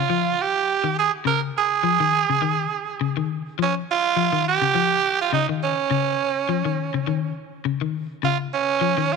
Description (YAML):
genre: afrobeat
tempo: 103 BPM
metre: 4/4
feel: swing 56% on 16ths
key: unclear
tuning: A4 = 439 Hz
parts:
  - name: breathy tenor saxophone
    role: melody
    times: 0.0-9.2 s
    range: Db4 to Bb4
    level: -21 LUFS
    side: right 8 dB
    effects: tape echo
  - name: electric guitar at the edge of break-up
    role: arpeggios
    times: 0.0-9.2 s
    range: Db3 to F3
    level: -25 LUFS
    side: left 11 dB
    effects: none
room: moderate echo chamber reverb, RT60 2.3 s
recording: 1960s-style stereo with parts hard left and right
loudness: -20 LUFS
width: side -4 dB against mid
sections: 0.0-9.2 A section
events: none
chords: 0.0 Dbadd9